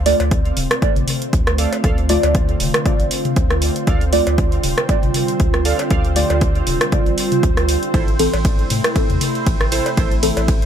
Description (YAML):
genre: dub techno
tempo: 118 BPM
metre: 4/4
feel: swing 56% on 16ths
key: D minor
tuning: A4 = 440 Hz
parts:
  - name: warbly tape-like pad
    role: sustained chords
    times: 0.0-10.7 s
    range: C3 to F4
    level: -24 LUFS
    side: right 3 dB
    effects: chorus, built-in reverb, phaser, sidechain pumping
  - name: soft dub sub bass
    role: bass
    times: 0.0-10.7 s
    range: D1 to A2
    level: -21 LUFS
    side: equal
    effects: sidechain pumping
  - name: bubbling stepped-filter texture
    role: texture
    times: 0.0-10.7 s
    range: C4 to C5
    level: -28 LUFS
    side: equal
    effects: chorus, built-in reverb, sidechain pumping
  - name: deep mellow chord stab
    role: stabs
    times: 0.1-10.5 s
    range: E3 to D5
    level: -22 LUFS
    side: equal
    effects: chorus, phaser, sidechain pumping, dub echo
  - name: punchy analog drum machine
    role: drums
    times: 0.1-10.7 s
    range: hi-hat, ride cymbal, rim click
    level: -23 LUFS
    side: right 1 dB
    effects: none
  - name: electronic cowbell and toms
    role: percussion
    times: 0.2-10.5 s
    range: none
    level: -26 LUFS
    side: left 5 dB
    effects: sidechain pumping on perc, sidechain pumping on toms, dub echo
  - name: electronic kick drum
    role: drums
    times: 0.3-10.6 s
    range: none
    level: -18 LUFS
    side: equal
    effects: none
  - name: warbly lo-fi synth keys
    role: riff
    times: 1.6-10.1 s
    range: E4 to F5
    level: -29 LUFS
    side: right 4 dB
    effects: chorus, sidechain pumping, dub echo
room: light reverb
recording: none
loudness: -15 LUFS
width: side -9 dB against mid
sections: 0.0-10.7 A section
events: filter sweep on synth stab 0.0-10.7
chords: 0.0 Dm; 7.9 Am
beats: 0.31 0.82 1.33 | 1.84 2.35 2.86 3.37 | 3.87 4.38 4.89 5.40 | 5.91 6.42 6.92 7.43 | 7.94 8.45 8.96 9.47 | 9.97 10.48